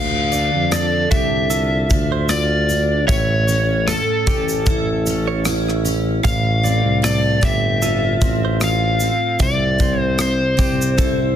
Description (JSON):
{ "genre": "acoustic pop", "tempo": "76 BPM", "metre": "4/4", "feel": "swing 55% on 16ths", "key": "D minor", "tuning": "A4 = 441 Hz", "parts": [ { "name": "overdriven slide guitar", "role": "melody", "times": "0.0-11.4 s", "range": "A4 to F5", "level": "-21 LUFS", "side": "left 1 dB", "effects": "none" }, { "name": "picked steel-string acoustic guitar", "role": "accompaniment", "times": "0.0-11.4 s", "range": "A2 to D5", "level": "-21 LUFS", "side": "equal", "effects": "double-tracked left and right" }, { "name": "direct-recorded clean electric guitar", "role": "arpeggios", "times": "0.0-11.2 s", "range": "G4 to F5", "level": "-30 LUFS", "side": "right 8 dB", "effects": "none" }, { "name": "warm tuba", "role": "bass", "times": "0.0-11.4 s", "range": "G1 to F2", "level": "-21 LUFS", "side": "equal", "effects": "none" }, { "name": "modern studio drum kit", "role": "drums", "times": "0.3-11.2 s", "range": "kick drum, rim click, shaker", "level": "-21 LUFS", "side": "equal", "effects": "soft clipping on snare" }, { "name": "tambourine", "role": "percussion", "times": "0.3-11.2 s", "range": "none", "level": "-36 LUFS", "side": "left 4 dB", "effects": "none" } ], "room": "light reverb, small room ambience", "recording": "dense, heavily limited modern master", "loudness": "-15 LUFS", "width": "side -10 dB against mid", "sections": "0.0-11.4 A section", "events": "none", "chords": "0.0 Dm; 3.1 A; 6.2 F; 9.4 C", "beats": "0.72 1.51 2.30 | 3.09 3.88 4.67 5.46 | 6.24 7.03 7.82 8.61 | 9.40 10.19 10.98" }